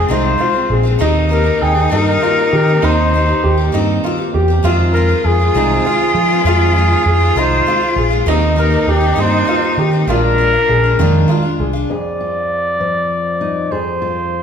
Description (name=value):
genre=folk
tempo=66 BPM (dotted quarters)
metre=6/8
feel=straight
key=unclear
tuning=A4 = 438 Hz
part: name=mellow trumpet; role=melody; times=0.0-14.4 s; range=G4 to D5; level=-17 LUFS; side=left 1 dB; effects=none
part: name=clear cello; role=second line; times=0.0-11.6 s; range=C4 to F4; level=-20 LUFS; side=left 3 dB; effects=none
part: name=picked twelve-string acoustic guitar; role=accompaniment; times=0.0-11.9 s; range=F2 to G4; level=-22 LUFS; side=left 2 dB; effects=none
part: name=warm upright piano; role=arpeggios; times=0.0-11.9 s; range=Eb3 to G5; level=-18 LUFS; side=right 2 dB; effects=none
part: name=picked electric bass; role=bass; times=0.0-11.8 s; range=Bb1 to F3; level=-16 LUFS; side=equal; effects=none
part: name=fingerpicked steel-string acoustic guitar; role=accompaniment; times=11.9-14.4 s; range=F2 to Ab4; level=-22 LUFS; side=left 2 dB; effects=none
room=wet large studio reverb, RT60 1.4 s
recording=band playing live in one room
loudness=-12 LUFS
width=side -7 dB against mid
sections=0.0-11.9 A section; 11.9-14.4 B section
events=none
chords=0.0 Fm7; 1.0 Cm7/Eb; 4.6 Fm7; 8.3 Cm7/Eb; 10.1 Bb7; 11.9 Fm7